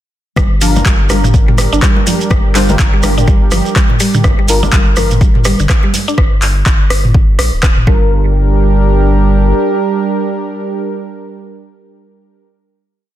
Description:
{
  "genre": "afro house",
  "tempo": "124 BPM",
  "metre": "4/4",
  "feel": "swing 59% on 16ths",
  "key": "G minor",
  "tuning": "A4 = 440 Hz",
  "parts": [
    { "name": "warm analog pad", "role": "sustained chords", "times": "0.4-12.5 s", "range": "G3 to Bb4", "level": "-18 LUFS", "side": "right 3 dB", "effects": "chorus, sidechain pumping" },
    { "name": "mallet-like synth pluck", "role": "arpeggios", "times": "0.4-8.3 s", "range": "D3 to D4", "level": "-19 LUFS", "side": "right 1 dB", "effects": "chorus, cassette tape, sidechain pumping, dub echo" },
    { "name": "round analog bass", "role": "bass", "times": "0.4-9.5 s", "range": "D1 to Bb1", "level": "-14 LUFS", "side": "equal", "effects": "sidechain pumping" },
    { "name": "afro-pop drum kit", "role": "drums", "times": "0.4-7.9 s", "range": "handclaps, hi-hat, rim click, toms", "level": "-16 LUFS", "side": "equal", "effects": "overdrive" },
    { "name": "electronic kick drum", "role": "drums", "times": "0.4-8.0 s", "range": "none", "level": "-11 LUFS", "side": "equal", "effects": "overdrive" },
    { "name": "congas", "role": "percussion", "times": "0.4-6.0 s", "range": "none", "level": "-22 LUFS", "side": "left 2 dB", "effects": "none" },
    { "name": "shekere", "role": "percussion", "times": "0.4-6.2 s", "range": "none", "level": "-23 LUFS", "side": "right 6 dB", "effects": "none" },
    { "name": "deep mellow chord stab", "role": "stabs", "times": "0.6-12.5 s", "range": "D4 to C5", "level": "-20 LUFS", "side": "left 3 dB", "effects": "ensemble chorus, sidechain pumping, dub echo" }
  ],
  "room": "little or no reverb",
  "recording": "dense, heavily limited modern master",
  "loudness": "-9 LUFS",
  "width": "side -12 dB against mid",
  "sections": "0.4-8.1 drop; 8.1-12.0 final hit",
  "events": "drop 0.4-8.1",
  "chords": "0.4 Gm7"
}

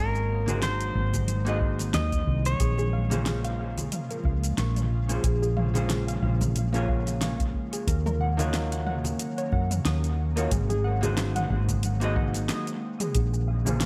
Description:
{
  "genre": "sunset chillout",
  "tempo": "91 BPM",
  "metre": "4/4",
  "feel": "swing 56% on 16ths",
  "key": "Bb minor",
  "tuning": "A4 = 435 Hz",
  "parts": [
    { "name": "direct-recorded clean electric guitar", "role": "melody", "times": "0.0-3.2 s", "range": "Bb4 to Eb5", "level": "-35 LUFS", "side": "equal", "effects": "vintage 12-bit sampler grit, analog delay" },
    { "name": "ethereal airy pad", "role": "sustained chords", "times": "0.1-13.9 s", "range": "Db3 to F4", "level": "-38 LUFS", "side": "equal", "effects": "ensemble chorus, built-in reverb" },
    { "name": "woody fretless electric bass", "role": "bass", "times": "0.0-13.9 s", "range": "Ab1 to Gb2", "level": "-29 LUFS", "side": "equal", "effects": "tube saturation" },
    { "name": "deep house drum kit", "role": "drums", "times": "0.2-13.9 s", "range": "hi-hat, shaker, snare drum, toms", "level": "-35 LUFS", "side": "equal", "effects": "overdrive, studio reverb, analog delay" },
    { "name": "vintage hollow-body jazz guitar", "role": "accompaniment", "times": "0.5-13.9 s", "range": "Bb3 to Eb5", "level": "-36 LUFS", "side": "equal", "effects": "low-pass filter, dub echo" },
    { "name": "congas", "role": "percussion", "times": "0.5-13.8 s", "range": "none", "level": "-39 LUFS", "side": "equal", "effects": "none" },
    { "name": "electronic kick drum", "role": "drums", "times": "1.1-13.3 s", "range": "none", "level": "-31 LUFS", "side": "equal", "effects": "overdrive, studio reverb" },
    { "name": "soft round pluck", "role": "arpeggios", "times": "2.6-13.8 s", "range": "Ab4 to Eb6", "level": "-37 LUFS", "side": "equal", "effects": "analog chorus, dub echo" }
  ],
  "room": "light reverb",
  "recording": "echo-heavy mix",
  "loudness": "-27 LUFS",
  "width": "mono",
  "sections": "0.0-13.2 A section",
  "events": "break 12.5-13.2",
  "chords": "0.0 Ab7; 2.6 Bbm7; 7.9 Ebm7; 10.5 Ab7; 13.2 Bbm7"
}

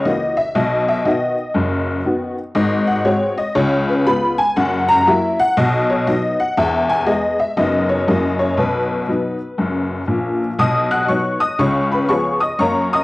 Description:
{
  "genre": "jazz, stride piano",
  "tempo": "120 BPM",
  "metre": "4/4",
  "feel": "swing 64% on 8ths",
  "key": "B major",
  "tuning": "A4 = 439 Hz",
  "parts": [
    { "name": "honky-tonk upright piano", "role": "solo", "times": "0.0-13.0 s", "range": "E1 to F#6", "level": "-15 LUFS", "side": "left 1 dB", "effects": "cassette tape" }
  ],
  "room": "moderate spring reverb, RT60 1.9 s, studio ambience",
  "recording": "home recording on cassette",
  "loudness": "-15 LUFS",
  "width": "side -20 dB against mid",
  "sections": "0.0-10.6 A section; 10.6-13.0 A section",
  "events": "none",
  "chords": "0.0 F#7; 0.6 B; 2.6 G#7; 3.6 C#7; 4.6 F#7; 5.6 B; 6.6 E; 7.6 B/F#; 8.1 F#7; 8.6 B; 11.6 C#7"
}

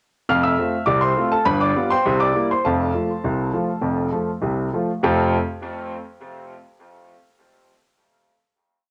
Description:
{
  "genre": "ragtime piano",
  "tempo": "102 BPM",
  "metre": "2/4",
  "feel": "straight",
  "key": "F major",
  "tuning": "A4 = 440 Hz",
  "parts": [
    { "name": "clear grand piano", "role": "solo", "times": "0.3-5.4 s", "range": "F1 to F6", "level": "-21 LUFS", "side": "equal", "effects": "cassette tape, tape echo" }
  ],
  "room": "moderate spring reverb, RT60 1.4 s, small room ambience",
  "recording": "home recording on cassette",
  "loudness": "-21 LUFS",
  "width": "mono",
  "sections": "0.3-5.0 A section; 5.0-6.2 final chord",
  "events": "none",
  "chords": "0.3 F; 1.5 G7; 2.1 C7; 2.6 F"
}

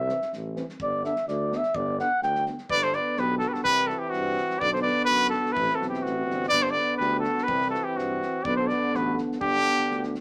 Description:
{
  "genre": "balkan folk, Balkan brass band",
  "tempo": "125 BPM",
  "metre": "2/4",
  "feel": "straight",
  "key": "G major",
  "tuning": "A4 = 440 Hz",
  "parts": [
    { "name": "dark trumpet", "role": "second line", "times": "0.0-10.1 s", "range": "C4 to G5", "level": "-34 LUFS", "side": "equal", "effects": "none" },
    { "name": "mellow tuba", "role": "bass", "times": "0.0-10.2 s", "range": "G1 to G2", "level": "-36 LUFS", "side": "equal", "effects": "none" },
    { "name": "mellow euphonium", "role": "accompaniment", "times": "0.1-10.2 s", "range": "B3 to C4", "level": "-36 LUFS", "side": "equal", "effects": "none" },
    { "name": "warm euphonium", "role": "accompaniment", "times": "0.1-10.2 s", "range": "D3 to E3", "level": "-37 LUFS", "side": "equal", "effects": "none" },
    { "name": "loose indie drum kit", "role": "percussion", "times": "0.1-10.2 s", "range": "kick drum, snare drum", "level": "-48 LUFS", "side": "equal", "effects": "none" },
    { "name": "clear trumpet", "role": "melody", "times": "2.7-10.1 s", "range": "F#4 to D5", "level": "-27 LUFS", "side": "equal", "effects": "none" }
  ],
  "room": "moderate club reverb, RT60 0.8 s",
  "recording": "none",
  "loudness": "-26 LUFS",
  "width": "mono",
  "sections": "0.0-2.7 A section; 2.7-10.2 B section",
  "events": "trumpet solo 0.0-2.7",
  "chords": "0.0 C; 0.8 G; 3.7 C; 4.6 Bm; 5.6 Am; 6.5 G; 7.5 C; 8.4 Bm; 9.4 G"
}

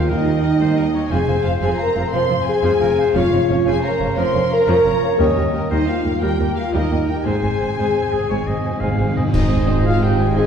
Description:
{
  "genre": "cinematic, heroic adventure film score",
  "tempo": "117 BPM (dotted quarters)",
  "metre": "12/8",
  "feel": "straight",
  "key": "Ab major",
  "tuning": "A4 = 439 Hz",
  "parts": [
    { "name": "warm symphonic violin section", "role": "melody", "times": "0.0-10.5 s", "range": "Bb4 to C6", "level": "-30 LUFS", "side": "left 3 dB", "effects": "none" },
    { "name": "bright oboe", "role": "second line", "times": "0.0-10.5 s", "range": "Ab4 to F5", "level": "-30 LUFS", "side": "equal", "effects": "none" },
    { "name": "clear clarinet", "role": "second line", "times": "0.0-10.5 s", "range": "Bb4 to Db5", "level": "-31 LUFS", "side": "equal", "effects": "none" },
    { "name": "dark symphonic violin section", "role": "second line", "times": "0.0-10.5 s", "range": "Ab4 to C6", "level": "-30 LUFS", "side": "left 2 dB", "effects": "none" },
    { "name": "mellow French horn section", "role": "sustained chords", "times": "0.0-10.5 s", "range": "Bb3 to C5", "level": "-19 LUFS", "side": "equal", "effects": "none" },
    { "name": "rich symphonic double bass section", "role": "bass", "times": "0.0-10.5 s", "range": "F1 to Eb2", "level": "-24 LUFS", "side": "right 2 dB", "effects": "none" },
    { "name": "warm symphonic cello section", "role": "bass", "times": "0.0-10.5 s", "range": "Eb2 to Ab2", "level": "-25 LUFS", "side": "right 1 dB", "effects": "none" },
    { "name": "mellow concert flute", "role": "second line", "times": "0.1-10.5 s", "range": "Eb5 to Ab5", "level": "-32 LUFS", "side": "left 1 dB", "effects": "none" },
    { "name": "warm symphonic viola section", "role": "accompaniment", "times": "0.1-10.5 s", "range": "F3 to Eb4", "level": "-27 LUFS", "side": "right 1 dB", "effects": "none" },
    { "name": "timpani", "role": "percussion", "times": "0.1-0.6, 7.3-9.3 s", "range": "Ab2 to Eb3", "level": "-23 LUFS", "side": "equal", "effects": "none" },
    { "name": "cymbal swell, clash cymbals and concert bass drum", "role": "percussion", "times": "5.2-10.0 s", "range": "none", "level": "-25 LUFS", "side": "equal", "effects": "none" },
    { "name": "mellow trumpet section", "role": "stabs", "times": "9.3-10.5 s", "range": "C5 to Ab5", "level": "-26 LUFS", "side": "equal", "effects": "none" },
    { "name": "mellow tuba", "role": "bass", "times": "9.3-10.5 s", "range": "Ab1", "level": "-24 LUFS", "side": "right 4 dB", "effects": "none" }
  ],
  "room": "wet scoring stage reverb, RT60 1.6 s",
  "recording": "heard from further back in the room",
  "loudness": "-15 LUFS",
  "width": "side -7 dB against mid",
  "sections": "0.0-9.3 A section; 9.3-10.5 A section",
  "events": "timpani fill 7.3-9.3; band accent 9.3-9.7",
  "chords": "0.1 Eb; 1.1 Fm; 3.2 Bbm/F; 5.2 Eb7; 7.3 Ab"
}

